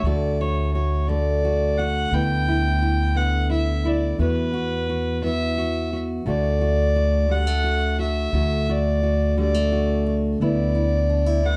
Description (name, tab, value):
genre	folk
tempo	58 BPM (dotted quarters)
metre	6/8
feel	straight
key	D major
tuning	A4 = 437 Hz
part	warm fiddle	melody	0.0-11.6 s	B4 to G5	-27 LUFS	equal	slapback echo
part	fingerpicked steel-string acoustic guitar	accompaniment	0.0-11.6 s	D2 to F#4	-27 LUFS	equal	none
part	upright bass	bass	0.0-11.6 s	D2 to E2	-25 LUFS	equal	none
room	light reverb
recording	dark, warm production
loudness	-22 LUFS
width	mono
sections	0.0-11.6 A section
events	none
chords	0.0 D; 2.1 G6/D; 4.2 Esus2; 6.3 D; 10.4 Dsus2